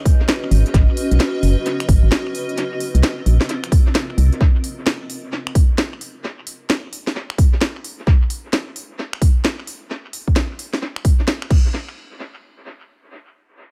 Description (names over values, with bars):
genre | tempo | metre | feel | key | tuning
UK garage, two-step garage | 131 BPM | 4/4 | swing 63% on 16ths | unclear | A4 = 441 Hz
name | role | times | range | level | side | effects
ethereal airy pad | sustained chords | 0.0-0.8 s | Eb5 | -40 LUFS | equal | ensemble chorus, built-in reverb, sidechain pumping
granular cloud pad | texture | 0.0-4.4 s | C4 to Eb5 | -28 LUFS | equal | built-in reverb, sidechain pumping
electronic kick drum | drums | 0.1-11.6 s | none | -16 LUFS | equal | none
house drum kit | drums | 0.1-11.6 s | crash cymbal, finger snaps, hi-hat, snare drum | -25 LUFS | equal | dub echo
organ-like FM bass | bass | 0.5-4.3 s | Gb1 to C2 | -16 LUFS | equal | tube saturation, sidechain pumping
room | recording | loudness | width
little or no reverb | echo-heavy mix | -18 LUFS | mono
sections
0.0-11.7 A section; 11.7-13.7 B section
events
none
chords
0.0 Db7(no3); 0.5 Abm7; 2.3 Cm7; 4.4 N.C.